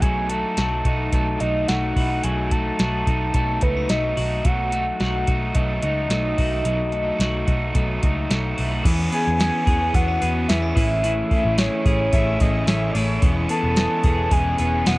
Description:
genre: jangly indie pop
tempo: 109 BPM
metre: 4/4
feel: straight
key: E major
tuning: A4 = 440 Hz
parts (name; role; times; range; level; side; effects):
- soft octave-layered synth lead; melody; 0.0-15.0 s; B4 to A5; -25 LUFS; equal; chorus, phaser
- crunchy overdriven guitar; accompaniment; 0.0-15.0 s; B2 to G#4; -27 LUFS; right 2 dB; none
- twelve-string electric guitar; arpeggios; 0.0-15.0 s; E3 to A4; -27 LUFS; left 2 dB; spring reverb
- vintage muted picked electric bass; bass; 0.0-15.0 s; E1 to E2; -24 LUFS; equal; none
- soft vintage rhythm box; drums; 0.0-15.0 s; crash cymbal, hi-hat, kick drum, snare drum; -21 LUFS; equal; overdrive
- string machine, violas; sustained chords; 8.9-15.0 s; A3 to C#6; -34 LUFS; equal; ensemble chorus
- warm trumpet; second line; 12.1-13.4 s; C#5 to E5; -28 LUFS; left 1 dB; none
room: little or no reverb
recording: worn, warbling old tape, cassette tape, warbly pitch drift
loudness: -18 LUFS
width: side -20 dB against mid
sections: 0.0-8.9 A section; 8.9-15.0 B section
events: none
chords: 0.0 B7; 8.9 E6; 10.8 Amaj7; 13.2 E6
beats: | 0.03 0.58 1.14 1.69 | 2.25 2.80 3.35 3.90 | 4.46 5.01 5.56 6.11 | 6.66 7.21 7.76 8.31 | 8.86 9.40 9.95 10.50 | 11.04 11.59 12.13 12.68 | 13.23 13.77 14.32 14.87

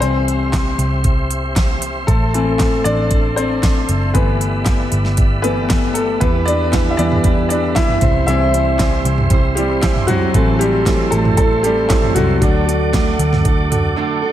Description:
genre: piano-driven pop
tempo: 116 BPM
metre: 4/4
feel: straight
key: unclear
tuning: A4 = 445 Hz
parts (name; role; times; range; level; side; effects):
- clear upright piano; accompaniment; 0.0-14.3 s; E3 to E5; -18 LUFS; left 3 dB; slapback echo
- tonewheel organ; sustained chords; 0.0-14.3 s; G4 to D6; -25 LUFS; right 1 dB; chorus vibrato, stopped rotary speaker
- vintage muted picked electric bass; bass; 0.0-13.9 s; F#1 to E2; -20 LUFS; equal; none
- pop drum kit; drums; 0.0-13.8 s; handclaps, hi-hat, kick drum, snare drum, toms; -17 LUFS; right 1 dB; none
- fingerpicked steel-string acoustic guitar; riff; 6.2-14.3 s; A2 to C5; -21 LUFS; right 6 dB; slapback echo
room: moderate lush hall reverb, RT60 1.8 s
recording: big arena sound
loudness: -13 LUFS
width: side -12 dB against mid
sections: 0.0-14.3 A section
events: upright piano solo 0.0-14.3; break 14.0-14.3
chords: 0.0 C; 2.1 Am; 4.1 G6; 6.2 Em; 8.0 C; 10.3 Am; 12.4 D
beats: | 0.01 0.53 1.05 1.56 | 2.08 2.60 3.11 3.63 | 4.15 4.66 5.18 5.70 | 6.21 6.73 7.25 7.77 | 8.28 8.80 9.32 9.83 | 10.35 10.87 11.38 11.90 | 12.42 12.93 13.45 13.97

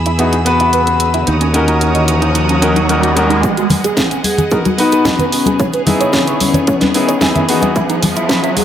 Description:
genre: nu-disco, nu disco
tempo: 111 BPM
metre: 4/4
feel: straight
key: G# minor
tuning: A4 = 440 Hz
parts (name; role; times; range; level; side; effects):
- clear chamber violin section; sustained chords; 0.0-8.6 s; B3 to E6; -22 LUFS; equal; vintage 12-bit sampler grit, sidechain pumping
- modern bright fingered electric bass; bass; 0.0-3.4 s; D#2 to E2; -16 LUFS; equal; none
- riser; sound effects; 0.7-8.6 s; none; -21 LUFS; right 1 dB; none
- direct-recorded clean electric guitar; riff; 0.1-8.5 s; C#4 to C#6; -21 LUFS; right 4 dB; ensemble chorus, vintage 12-bit sampler grit, low-pass filter, analog delay
- house drum kit; drums; 0.1-8.6 s; hi-hat, snare drum; -19 LUFS; right 1 dB; overdrive, analog delay
- clear grand piano; accompaniment; 0.2-7.7 s; B3 to B4; -16 LUFS; left 2 dB; sidechain pumping, analog delay
- electronic kick drum; drums; 3.4-8.4 s; none; -19 LUFS; equal; overdrive, high-pass filter on kick, high-pass filter on room
- egg shaker and congas; percussion; 3.4-8.6 s; none; -18 LUFS; left 2 dB; none
- vibraphone with medium hard mallets; melody; 4.2-8.6 s; C#4 to G#4; -18 LUFS; left 2 dB; analog delay
room: wet spring reverb, RT60 1.6 s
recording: echo-heavy mix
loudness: -11 LUFS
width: side -10 dB against mid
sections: 0.0-3.4 A section; 3.4-8.6 B section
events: riser 0.7-3.4, 3.4-8.6; build-up 3.4-8.6; filter sweep on clean electric guitar 3.4-8.6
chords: 0.0 Emaj7; 1.3 D#m7; 3.4 G#m7; 5.6 C#m7; 7.5 Emaj7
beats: 0.19 0.73 | 1.27 1.81 2.35 2.90 | 3.44 3.98 4.52 5.06 | 5.60 6.14 6.68 7.22 | 7.76 8.30

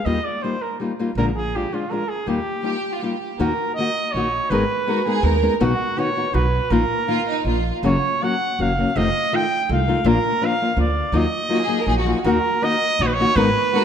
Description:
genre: mexican folk, mariachi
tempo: 162 BPM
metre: 3/4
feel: rubato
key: Eb major, Eb minor from 3.4 s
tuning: A4 = 440 Hz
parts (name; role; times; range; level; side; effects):
- clear trumpet; melody; 0.0-13.8 s; F4 to G5; -22 LUFS; right 2 dB; slapback echo
- nylon-string guitar; accompaniment; 0.1-13.8 s; F2 to Bb4; -22 LUFS; left 3 dB; none
- upright bass; bass; 0.1-13.5 s; F1 to Eb2; -23 LUFS; right 1 dB; none
- rich studio violin section; second line; 2.6-7.7, 11.5-13.8 s; Eb4 to Bb4; -26 LUFS; right 3 dB; none
room: moderate scoring stage reverb, RT60 1.9 s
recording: none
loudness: -18 LUFS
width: side -8 dB against mid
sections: 0.0-3.4 A section; 3.4-12.3 B section; 12.3-13.8 B section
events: none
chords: 0.1 Ebadd9; 1.2 Bb7; 2.3 Ebadd9; 3.4 Ebm; 4.5 Abmadd9; 5.6 B; 6.7 Bbsus4; 7.5 Bb; 7.8 Gb; 9.0 F7; 10.1 Bb; 11.1 Ebmadd9; 12.3 Ebm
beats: | 0.06 0.43 0.80 | 1.17 1.53 1.90 | 2.27 2.64 3.02 | 3.40 3.77 4.14 | 4.52 4.88 5.24 | 5.61 5.97 6.34 | 6.71 7.08 7.46 | 7.84 8.22 8.59 | 8.96 9.33 9.70 | 10.06 10.42 10.78 | 11.14 11.51 11.88 | 12.26 12.63 13.00 | 13.37 13.74

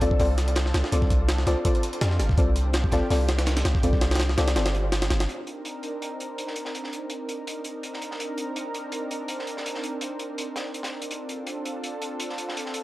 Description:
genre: drum and bass, jungle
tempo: 165 BPM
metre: 4/4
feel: swing 54% on 16ths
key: C dorian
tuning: A4 = 440 Hz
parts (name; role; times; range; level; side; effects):
- lush unison pad; sustained chords; 0.0-12.8 s; C4 to Bb4; -33 LUFS; right 1 dB; chorus, vintage 12-bit sampler grit
- deep mellow chord stab; stabs; 0.0-4.6 s; C4 to D5; -29 LUFS; left 2 dB; chorus, cassette tape, dub echo
- long sustained 808-style bass; bass; 0.0-5.3 s; G1 to F2; -24 LUFS; equal; tube saturation
- crunchy breakbeat drum kit; drums; 0.0-12.8 s; hi-hat, snare drum; -36 LUFS; equal; high-pass filter on hats, high-pass filter on snare, high-pass filter on room
- jungle sampler-style drum kit; drums; 0.0-5.3 s; hi-hat, kick drum, snare drum; -25 LUFS; equal; none
room: light reverb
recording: dry, gritty hardware recording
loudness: -24 LUFS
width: side -18 dB against mid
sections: 0.0-5.3 A section; 5.3-12.8 B section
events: none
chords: 0.0 Dm7; 5.3 Cm9; 11.1 Dm7/C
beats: 0.20 0.56 | 0.92 1.29 1.65 2.02 | 2.38 2.74 3.10 3.47 | 3.83 4.20 4.56 4.92 | 5.29 5.65 6.01 6.38 | 6.74 7.11 7.47 7.83 | 8.20 8.56 8.92 9.29 | 9.65 10.02 10.38 10.74 | 11.11 11.47 11.83 12.20 | 12.56

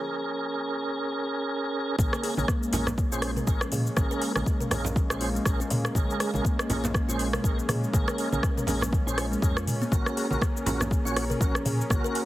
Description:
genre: afro house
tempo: 121 BPM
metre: 4/4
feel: swing 57% on 16ths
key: Bb minor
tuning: A4 = 440 Hz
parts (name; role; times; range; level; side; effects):
- tonewheel organ; stabs; 0.0-12.3 s; Db4 to Db5; -32 LUFS; right 1 dB; chorus vibrato, fast rotary speaker, vintage 12-bit sampler grit, sidechain pumping, tape echo
- warm analog pad; sustained chords; 2.0-12.3 s; Ab3 to Bb4; -34 LUFS; equal; chorus, sidechain pumping
- kalimba; arpeggios; 2.0-12.1 s; F3 to Bb4; -34 LUFS; equal; sidechain pumping, tape echo
- woody FM bass; bass; 2.0-12.0 s; Bb1 to Bb2; -32 LUFS; equal; sidechain pumping
- afro-pop drum kit; drums; 2.0-12.3 s; hi-hat, rim click, shaker, toms; -32 LUFS; equal; none
- electronic kick drum; drums; 2.0-12.0 s; none; -26 LUFS; equal; overdrive
- congas; percussion; 2.0-12.0 s; none; -35 LUFS; right 1 dB; none
room: light reverb, digital ambience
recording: heavily compressed radio sound, multiband compression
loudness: -24 LUFS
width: side -15 dB against mid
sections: 0.0-2.0 A section; 2.0-12.3 B section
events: filter sweep on kalimba 0.0-2.0; break 0.0-2.0; drop 2.0-12.3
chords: 0.0 Bbm7; 9.9 Gb/Bb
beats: | 0.00 0.50 0.99 1.49 | 1.99 2.48 2.98 3.47 | 3.97 4.46 4.96 5.46 | 5.95 6.45 6.94 7.44 | 7.94 8.43 8.93 9.42 | 9.92 10.41 10.91 11.41 | 11.90

